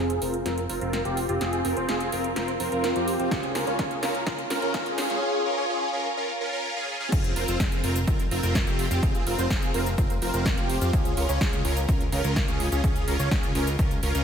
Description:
EDM, festival progressive house; 126 BPM; 4/4; straight; F minor; A4 = 441 Hz
supersaw chords; riff; 0.0-14.2 s; C4 to Db5; -26 LUFS; equal; analog chorus, cassette tape, sidechain pumping, low-pass filter, diffuse ambient delay
fat analog bass; bass; 0.0-14.2 s; F1 to F2; -30 LUFS; equal; sidechain pumping
big-room dance drum kit; drums; 0.1-14.2 s; crash cymbal, hi-hat, shaker, snare drum; -32 LUFS; equal
electronic kick drum; drums; 3.3-13.9 s; -26 LUFS; equal; overdrive
wet lush hall reverb, RT60 1.8 s, digital ambience; dreamy mix soaked in reverb, high-pass filter; -23 LUFS; side -7 dB against mid
0.0-7.1 A section; 7.1-14.2 B section
build-up 0.0-7.1; drum fill 0.0-5.2; filter sweep on supersaw synth 0.0-7.1; filter sweep 0.0-7.1; drop 7.1-14.2
0.0 Fm; 3.3 Db; 7.1 Fm; 10.9 Db

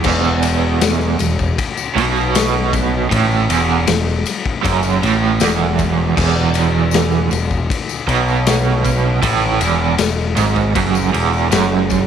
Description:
psychedelic rock; 78 BPM; 4/4; straight; E major; A4 = 441 Hz
overdriven electric guitar; riff; 0.0-12.1 s; E2 to B2; -17 LUFS; right 8 dB; tremolo
growling picked electric bass; bass; 0.0-12.1 s; E1 to B1; -19 LUFS; left 2 dB; overdrive
raw garage drum kit; drums; 0.0-12.1 s; crash cymbal, kick drum, ride cymbal, snare drum; -19 LUFS; left 6 dB
tambourine; percussion; 0.2-12.1 s; -31 LUFS; left 17 dB
moderate spring reverb, RT60 2.4 s; 1960s-style stereo with parts hard left and right; -14 LUFS; side -8 dB against mid
0.0-12.1 A section
0.0 E5

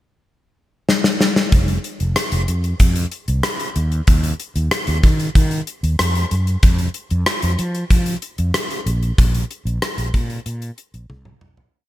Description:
1980s-style pop; 94 BPM; 4/4; straight; A4 = 442 Hz
gated 80s drum kit; drums; 0.9-11.7 s; hi-hat, kick drum, rim click, snare drum, toms; -17 LUFS; equal; gated reverb
fretless electric bass; bass; 1.5-11.7 s; F1 to F3; -19 LUFS; equal
little or no reverb; -16 LUFS; side -15 dB against mid
0.0-1.5 pickup bar; 1.5-11.7 verse
drum fill 0.9-1.5, 11.1-11.7; fade-out 9.2-11.7

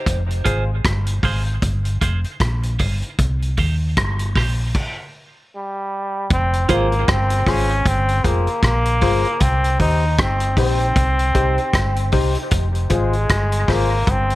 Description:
dub reggae; 77 BPM; 4/4; swing 59% on 16ths; F minor; A4 = 440 Hz
hollow-body short-scale fingered electric bass; bass; 0.1-14.4 s; F1 to Eb2; -20 LUFS; equal
vintage drum kit; drums; 0.1-14.4 s; crash cymbal, hi-hat, kick drum, rim click; -21 LUFS; equal
clean electric guitar; accompaniment; 0.4-6.9 s; Eb4 to C5; -26 LUFS; right 5 dB; high-pass filter, dub echo
percussive organ stab; stabs; 0.5-14.0 s; Eb4 to C5; -26 LUFS; left 4 dB; chorus, high-pass filter, dub echo
brilliant trombone; melody; 5.6-14.4 s; G3 to Eb4; -21 LUFS; equal; dub echo
light reverb; -16 LUFS; side -17 dB against mid
0.0-6.3 A section; 6.3-14.4 B section
filter sweep 0.0-6.3; stop 4.7-6.3
0.1 Fm; 3.2 Cm; 6.3 Fm; 9.4 Cm; 12.5 Fm

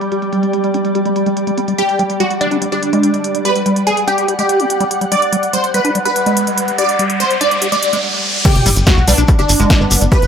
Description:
psychedelic trance; 144 BPM; 4/4; straight; G major; A4 = 440 Hz
pulsing gated texture; sustained chords; 0.0-10.3 s; G3; -23 LUFS; equal; chorus, built-in reverb, sidechain pumping
liquid acid bass; riff; 0.0-10.2 s; G3 to G4; -20 LUFS; moving between left 4 dB and right 3 dB; chorus, auto-pan, sidechain pumping, digital delay
big-room dance drum kit; drums; 0.0-10.3 s; crash cymbal, hi-hat, snare drum; -21 LUFS; right 1 dB; low-pass filter on hats, low-pass filter on cymbals, low-pass filter on snare, low-pass filter on room
ethereal airy pad; texture; 0.0-8.0 s; G4 to G5; -23 LUFS; equal; ensemble chorus, built-in reverb, phaser, sidechain pumping
supersaw stab; melody; 1.8-10.3 s; D4 to D5; -16 LUFS; right 1 dB; phaser, sidechain pumping, dub echo
riser and sub drop; sound effects; 6.2-10.1 s; -21 LUFS; equal
shekere; percussion; 8.4-10.3 s; -22 LUFS; left 2 dB
electronic kick drum; drums; 8.5-10.2 s; -12 LUFS; equal
tight sequencer bass; bass; 8.6-10.3 s; G1 to B1; -14 LUFS; equal
formant-sweep wobble bass; second line; 9.1-10.2 s; B3; -25 LUFS; right 2 dB; chorus, sidechain pumping, high-pass filter, tape echo
moderate digital room reverb, RT60 1.1 s, digital ambience; -12 LUFS; side -7 dB against mid
0.0-8.5 A section; 8.5-10.3 B section
riser 6.2-8.5; stop 8.0-8.5; drop 8.5-10.3; impact 8.5-10.1
0.0 G5

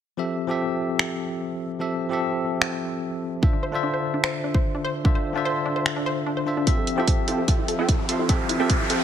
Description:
future bass; 148 BPM; 4/4; half-time; F major; A4 = 438 Hz
bell-like tine electric piano; accompaniment; 0.2-9.0 s; D3 to E5; -26 LUFS; left 1 dB; medium stereo tremolo, sidechain pumping, dub echo
pop drum kit; drums; 1.0-9.0 s; finger snaps, hi-hat; -26 LUFS; right 1 dB; high-pass filter on snare, high-pass filter on hats
electronic kick drum; drums; 3.4-8.8 s; -22 LUFS; equal
wide unison pluck; arpeggios; 3.5-9.0 s; D4 to C5; -30 LUFS; left 1 dB; sidechain pumping, dub echo
supersaw stab; riff; 6.7-9.0 s; C4 to C6; -26 LUFS; right 3 dB; sidechain pumping, low-pass filter
riser; sound effects; 7.4-9.0 s; -31 LUFS; right 1 dB
light reverb; -22 LUFS; side -9 dB against mid
0.2-6.7 A section; 6.7-9.0 B section
kick drops out 5.9-6.7; build-up 6.7-9.0; filter sweep on supersaw synth 6.7-9.0; riser 7.4-9.0
0.2 Fmaj9; 3.4 Dm7; 6.7 Fmaj9

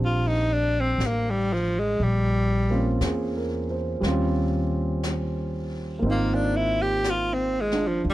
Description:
jazz ballad; 60 BPM; 4/4; swing 69% on 8ths; Eb major; A4 = 440 Hz
warm concert grand piano; accompaniment; 0.0-8.1 s; G3 to C5; -28 LUFS; right 2 dB
upright bass; bass; 0.0-8.1 s; Ab1 to Fb2; -26 LUFS; equal
growling tenor saxophone; melody; 0.1-8.1 s; F3 to G4; -24 LUFS; equal
jazz brush drum kit; drums; 1.0-8.1 s; brushed snare drum, hi-hat, snare drum; -38 LUFS; left 1 dB
small room ambience; -22 LUFS; side -16 dB against mid
0.0-8.1 A section
tenor saxophone solo 0.0-8.1
0.0 Eb69 (rootless); 2.0 Bbm; 4.0 Eb13; 6.0 Ab69

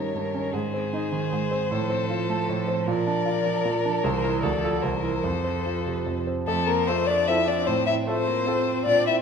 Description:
quick classical-period movement for piano quartet; 152 BPM; 3/4; straight; F major; A4 = 439 Hz
warm violin; melody; 0.0-9.1 s; A4 to E5; -26 LUFS; left 6 dB
rich cello; second line; 0.0-9.1 s; Eb3 to E4; -32 LUFS; right 8 dB
rich violin; second line; 0.0-9.2 s; A3 to Bb4; -32 LUFS; left 2 dB
warm concert grand piano; accompaniment; 0.0-9.2 s; C2 to Bb4; -26 LUFS; right 3 dB
moderate recital hall reverb, RT60 1.6 s; minimal, uncompressed stereo recording; -22 LUFS; side -6 dB against mid
0.0-6.5 A section; 6.5-9.2 B section
0.0 Eb7/G; 0.5 Ab; 1.7 F/A; 2.9 Bb; 4.0 C7; 4.4 Dm; 4.8 C7; 5.2 F; 7.7 F/A

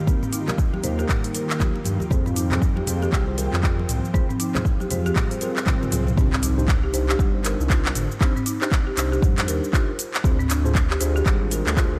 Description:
afro house; 118 BPM; 4/4; swing 60% on 16ths; C minor; A4 = 440 Hz
ethereal airy pad; sustained chords; 0.0-6.2 s; Eb3 to G5; -35 LUFS; equal; ensemble chorus, built-in reverb, vintage 12-bit sampler grit, sidechain pumping
folk marimba with medium hard mallets; arpeggios; 0.1-11.9 s; G3 to C5; -32 LUFS; equal; sidechain pumping, diffuse ambient delay
mellow tine electric piano; stabs; 0.1-11.9 s; Bb3 to C5; -33 LUFS; equal; sidechain pumping, diffuse ambient delay
afro-pop drum kit; drums; 0.1-11.9 s; handclaps, hi-hat, shaker, toms; -30 LUFS; equal
electronic kick drum; drums; 0.1-11.9 s; -23 LUFS; equal; overdrive
congas; percussion; 0.1-6.2 s; -35 LUFS; equal
dark detuned saw bass; bass; 0.8-12.0 s; G1 to Ab2; -27 LUFS; equal; sidechain pumping
swell and impact; sound effects; 5.5-8.2 s; -37 LUFS; equal
light reverb; -22 LUFS; mono
0.0-6.2 A section; 6.2-12.0 B section
drum fill 5.4-6.2; swell 5.5-6.2; drop 6.2-12.0; impact 6.2-8.2
0.0 Eb; 2.1 Fm; 6.2 Cmadd9; 10.2 Dm7b5

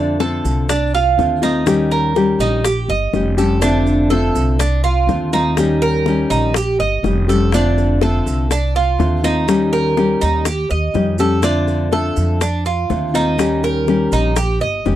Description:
latin, Cuban son and guajira; 123 BPM; 4/4; straight; A4 = 439 Hz
nylon-string guitar; accompaniment; 0.0-15.0 s; D3 to G4; -18 LUFS; left 4 dB
Cuban tres; arpeggios; 0.0-15.0 s; D4 to Eb5; -19 LUFS; right 5 dB
upright bass; bass; 0.0-15.0 s; F1 to F2; -19 LUFS; right 1 dB
bongos; percussion; 0.2-15.0 s; -22 LUFS; left 9 dB
maracas; percussion; 0.2-15.0 s; -33 LUFS; right 9 dB
light reverb; dry, close 1970s-style studio recording; -14 LUFS; side -12 dB against mid
0.0-15.0 A section
0.0 F6; 1.7 Eb7; 3.6 F6; 5.6 Eb7; 7.5 F6; 9.5 Eb7; 11.4 F6; 13.4 Eb7

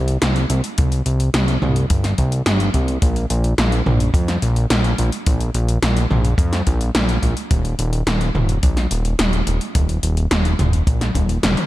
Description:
synthwave; 107 BPM; 4/4; straight; A4 = 440 Hz
fat analog bass; bass; 0.0-11.6 s; Eb1 to F2; -18 LUFS; equal; sidechain pumping
80s electronic pad drums; drums; 0.1-11.7 s; hi-hat, snare drum, toms; -21 LUFS; equal; gated reverb on snare and toms
kick drum; drums; 0.8-11.3 s; -19 LUFS; equal
light reverb; dark, warm production; -16 LUFS; side -16 dB against mid
0.0-11.7 A section
drum fill 11.2-11.7

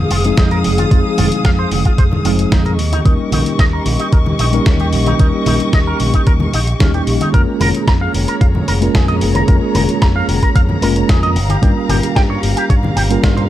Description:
nu-disco, nu disco; 112 BPM; 4/4; straight; A4 = 445 Hz
mellow tine electric piano; accompaniment; 0.0-13.5 s; F3 to Bb4; -19 LUFS; equal; medium stereo tremolo, sidechain pumping, analog delay
dark chamber string section; sustained chords; 0.0-13.5 s; G4 to Eb6; -23 LUFS; left 3 dB; vintage 12-bit sampler grit, sidechain pumping
picked electric bass with an envelope filter; bass; 0.0-13.5 s; F1 to G2; -17 LUFS; equal
electric guitar with an envelope filter; riff; 0.1-13.4 s; Db4 to Bb5; -23 LUFS; right 2 dB; wide subtle chorus, analog delay
dusty soul sampler-style drum kit; drums; 0.1-13.5 s; hi-hat, snare drum; -23 LUFS; equal
electronic kick drum; drums; 0.4-13.3 s; -13 LUFS; equal
congas; percussion; 0.4-13.5 s; -23 LUFS; left 2 dB
little or no reverb; -11 LUFS; side -13 dB against mid
0.0-13.5 A section
0.0 Fm7; 2.8 Eb7; 7.3 Bbm7/F; 11.4 Gm7b5

